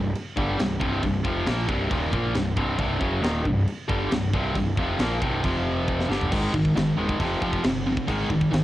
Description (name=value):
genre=heavy metal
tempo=136 BPM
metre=4/4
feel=straight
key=C minor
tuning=A4 = 436 Hz
part: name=heavy high-gain guitar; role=riff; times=0.0-8.6 s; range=C2 to Bb3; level=-24 LUFS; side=equal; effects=distortion
part: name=fuzz picked electric bass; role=bass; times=0.0-8.6 s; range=C1 to Bb1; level=-30 LUFS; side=equal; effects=overdrive
part: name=tight metal drum kit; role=drums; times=0.2-8.6 s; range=crash cymbal, kick drum, snare drum, toms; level=-29 LUFS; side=equal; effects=cassette tape
room=light reverb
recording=home recording on cassette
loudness=-22 LUFS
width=side -14 dB against mid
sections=0.0-6.3 A section; 6.3-8.6 B section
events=drum fill 5.9-6.3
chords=0.0 Cm; 5.4 F5; 6.1 G5; 6.3 Ab5; 7.2 F5; 8.1 Ab5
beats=0.15 0.59 | 1.03 1.47 1.91 2.35 | 2.79 3.23 3.67 4.11 | 4.55 4.99 5.43 5.87 | 6.31 6.75 7.20 7.64 | 8.08 8.52